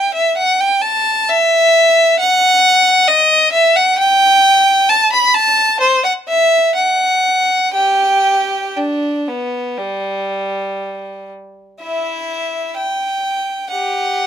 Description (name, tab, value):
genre	classical, baroque-style suite movement for unaccompanied violin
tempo	57-68 BPM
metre	4/4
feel	rubato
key	E minor, G major from 4.0 s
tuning	A4 = 440 Hz
part	rich violin	solo	0.0-14.3 s	G3 to B5	-12 LUFS	equal	none
room	light reverb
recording	minimal, uncompressed stereo recording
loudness	-11 LUFS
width	side -9 dB against mid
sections	0.0-11.8 A section; 11.8-14.3 A section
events	none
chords	none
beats	| 0.37 1.28 2.19 3.09 | 3.98 4.89 5.81 6.76 | 7.75 8.77 9.79 10.80 | 11.81 12.77 13.71